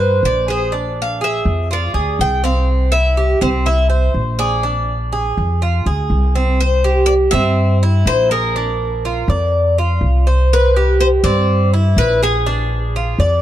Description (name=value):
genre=latin, Cuban son and guajira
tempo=123 BPM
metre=4/4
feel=straight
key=unclear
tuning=A4 = 435 Hz
part: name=Cuban tres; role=melody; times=0.0-13.4 s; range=Ab4 to G5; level=-19 LUFS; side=left 1 dB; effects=none
part: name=Cuban tres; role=arpeggios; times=0.0-13.4 s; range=C4 to D5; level=-19 LUFS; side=right 2 dB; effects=none
part: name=upright bass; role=bass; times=0.0-13.4 s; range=Bb1 to G2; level=-16 LUFS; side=equal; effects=none
room=light reverb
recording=dark, warm production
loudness=-13 LUFS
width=side -12 dB against mid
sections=0.0-6.6 A section; 6.6-13.4 B section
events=none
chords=0.0 Cmaj7(no3); 0.7 Bb7; 2.7 C; 4.6 Bb7; 6.6 C; 8.6 Bb; 10.5 Cmaj7; 12.5 Bb7